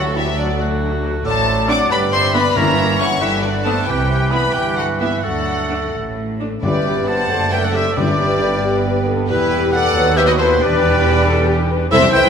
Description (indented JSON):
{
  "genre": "quick classical-period movement for symphony orchestra",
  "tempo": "91 BPM (dotted quarters)",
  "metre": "6/8",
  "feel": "rubato",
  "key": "G major",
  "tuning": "A4 = 442 Hz",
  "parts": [
    { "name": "rich studio violin section", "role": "melody", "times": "0.0-12.3 s", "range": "B4 to D6", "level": "-22 LUFS", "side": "left 3 dB", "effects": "none" },
    { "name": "clear clarinet", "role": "second line", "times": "0.0-11.9 s", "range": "D4 to D5", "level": "-25 LUFS", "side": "left 1 dB", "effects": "none" },
    { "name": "clear oboe", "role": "second line", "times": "0.0-12.2 s", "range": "F#4 to A5", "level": "-24 LUFS", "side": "right 2 dB", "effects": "none" },
    { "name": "clear studio violin section", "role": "second line", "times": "0.0-12.2 s", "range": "F#4 to F#5", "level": "-27 LUFS", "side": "left 2 dB", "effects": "none" },
    { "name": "warm bassoon", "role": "accompaniment", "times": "0.0-11.9 s", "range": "D3 to A3", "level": "-24 LUFS", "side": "right 1 dB", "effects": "none" },
    { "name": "warm studio viola section", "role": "accompaniment", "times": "0.0-12.3 s", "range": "F#3 to A4", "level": "-25 LUFS", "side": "right 2 dB", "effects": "none" },
    { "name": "warm French horn section", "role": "sustained chords", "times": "0.0-12.3 s", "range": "D3 to C5", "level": "-23 LUFS", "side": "left 3 dB", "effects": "none" },
    { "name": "dark studio double bass section", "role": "bass", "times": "0.0-12.2 s", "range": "E1 to D#2", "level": "-25 LUFS", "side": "right 3 dB", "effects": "none" },
    { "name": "warm studio cello section", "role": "bass", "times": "0.0-12.3 s", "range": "C2 to D3", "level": "-23 LUFS", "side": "right 2 dB", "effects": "none" },
    { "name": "timpani", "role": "percussion", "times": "0.0-0.6, 2.6-3.2, 6.6-8.6 s", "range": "G2 to D3", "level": "-24 LUFS", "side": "left 2 dB", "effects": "none" },
    { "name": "hollow concert flute", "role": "second line", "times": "0.2-12.3 s", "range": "D4 to D6", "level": "-24 LUFS", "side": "left 1 dB", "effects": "none" }
  ],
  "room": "wet scoring stage reverb, RT60 2.0 s",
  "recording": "minimal, uncompressed stereo recording",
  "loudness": "-14 LUFS",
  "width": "side -7 dB against mid",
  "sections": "0.0-6.6 A section; 6.6-12.3 B section",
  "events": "none",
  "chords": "0.0 D; 1.3 D7/A; 1.9 G; 2.6 Gdim7; 3.2 G; 3.9 Cmaj7; 5.2 D; 6.6 G; 7.3 D/F#; 8.0 G; 9.3 Em; 10.0 B/D#; 10.6 Em7"
}